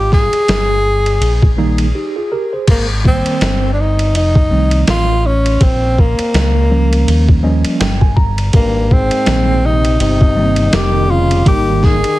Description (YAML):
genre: hip hop, jazz-hop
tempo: 82 BPM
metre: 4/4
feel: swing 58% on 16ths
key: Ab major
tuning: A4 = 439 Hz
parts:
  - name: breathy tenor saxophone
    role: melody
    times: 0.0-12.2 s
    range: Bb3 to Ab4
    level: -17 LUFS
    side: equal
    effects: tape echo
  - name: deep dub fingered electric bass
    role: bass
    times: 0.0-12.1 s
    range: F1 to Eb2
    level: -15 LUFS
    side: equal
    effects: none
  - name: boom bap sampler-style drum kit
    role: drums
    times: 0.1-12.2 s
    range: crash cymbal, hi-hat, kick drum, ride cymbal, snare drum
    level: -15 LUFS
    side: equal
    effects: none
  - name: tine electric piano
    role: accompaniment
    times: 1.6-12.0 s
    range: Eb3 to Bb5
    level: -18 LUFS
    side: right 2 dB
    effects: medium stereo tremolo
  - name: mellow trombone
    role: second line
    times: 8.5-12.2 s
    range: G2 to Eb3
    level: -21 LUFS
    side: left 5 dB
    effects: tape echo
room: light reverb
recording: heavily compressed radio sound, multiband compression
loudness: -11 LUFS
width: side -17 dB against mid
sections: 0.0-2.7 A section; 2.7-12.2 A section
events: break 1.9-2.7; tine electric piano fill 7.1-8.5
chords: 0.0 Abmaj7sus2; 2.7 Abmaj9; 4.1 F7; 5.6 Bbm; 7.1 Eb7; 8.5 Abmaj9